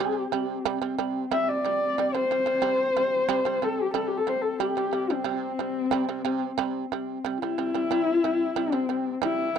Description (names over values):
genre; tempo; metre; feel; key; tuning
mongolian traditional, Mongolian folk; 91 BPM; 4/4; straight; C gong mode; A4 = 440 Hz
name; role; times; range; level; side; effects
dark horsehead fiddle; melody; 0.0-9.6 s; C4 to E5; -25 LUFS; left 3 dB; tape echo
shamisen; arpeggios; 0.0-9.6 s; C3 to G3; -30 LUFS; right 15 dB; none
dark horsehead fiddle; drone; 0.0-9.3 s; C4; -34 LUFS; left 4 dB; stereo widening
room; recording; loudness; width
light reverb; dry, close 1970s-style studio recording; -24 LUFS; side -8 dB against mid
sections
0.0-9.2 A section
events
none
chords
0.0 C5